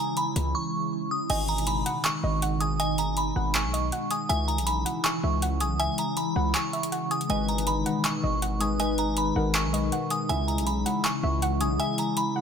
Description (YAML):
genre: hip hop, trap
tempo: 160 BPM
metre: 4/4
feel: half-time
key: G# minor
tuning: A4 = 440 Hz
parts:
  - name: glassy synth bell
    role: melody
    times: 0.0-12.4 s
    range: G#5 to D#6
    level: -29 LUFS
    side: equal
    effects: chorus, low-pass filter, ping-pong delay
  - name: glassy FM pad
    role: sustained chords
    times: 0.0-12.4 s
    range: B2 to E4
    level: -31 LUFS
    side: equal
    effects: ensemble chorus, built-in reverb
  - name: booming analog drum machine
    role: drums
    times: 0.2-12.3 s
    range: crash cymbal, handclaps, hi-hat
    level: -31 LUFS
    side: equal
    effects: none
  - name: hard-hitting 808-style bass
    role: bass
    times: 0.4-11.8 s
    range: G#1 to C#2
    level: -29 LUFS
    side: equal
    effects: none
  - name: soft round pluck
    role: second line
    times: 1.3-12.4 s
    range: D#5 to G#5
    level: -34 LUFS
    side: right 3 dB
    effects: chorus, ping-pong delay
  - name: warbly lo-fi synth keys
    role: accompaniment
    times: 7.3-12.4 s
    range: C#3 to B4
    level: -30 LUFS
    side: left 4 dB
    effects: chorus, low-pass filter
room: light reverb, digital ambience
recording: none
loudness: -24 LUFS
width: side -7 dB against mid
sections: 0.0-1.3 A section; 1.3-12.4 B section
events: break 0.5-1.3; kick muted 6.5-7.3, 11.8-12.4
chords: 0.0 C#m; 1.3 G#m; 4.3 C#m; 7.3 G#m; 10.3 C#m